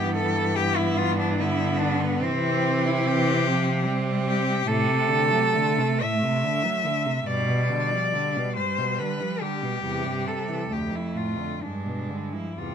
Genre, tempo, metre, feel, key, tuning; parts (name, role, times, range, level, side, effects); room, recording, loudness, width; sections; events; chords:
classical, lyrical piece for cello ensemble; 60-75 BPM; 3/4; rubato; A4 = 440 Hz
rich cello; melody; 0.0-12.7 s; B3 to E5; -26 LUFS; left 2 dB
clear cello; second line; 0.0-12.7 s; G3 to C4; -30 LUFS; right 7 dB
rich cello; accompaniment; 0.0-12.7 s; D2 to G3; -28 LUFS; left 2 dB
rich cello; bass; 0.0-12.7 s; F2 to C3; -28 LUFS; right 2 dB
moderate studio reverb, RT60 0.8 s; minimal, uncompressed stereo recording; -22 LUFS; side -8 dB against mid
0.0-12.7 A section
0.0 G; 2.2 C; 4.7 D7/A; 7.3 G7; 9.8 C/E; 10.7 Dm; 11.6 G7b9